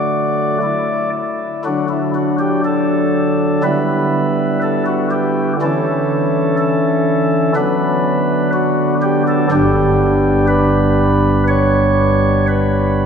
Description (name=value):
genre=classical, chorale-style piece for pipe organ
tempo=61 BPM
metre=4/4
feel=rubato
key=D major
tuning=A4 = 440 Hz
part: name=pipe organ, flutes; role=solo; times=0.0-13.1 s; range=G1 to D5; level=-13 LUFS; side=equal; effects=none
room=wet cathedral reverb, RT60 4.4 s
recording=heard from further back in the room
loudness=-13 LUFS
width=side -6 dB against mid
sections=0.0-1.6 A section; 1.6-13.1 A section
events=none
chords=0.0 D; 3.6 Em7/D; 5.6 A/D; 7.6 Bm/D; 9.5 G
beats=0.62 | 1.65 2.65 3.65 4.63 | 5.60 6.58 7.55 8.53 | 9.50 10.48 11.46 12.48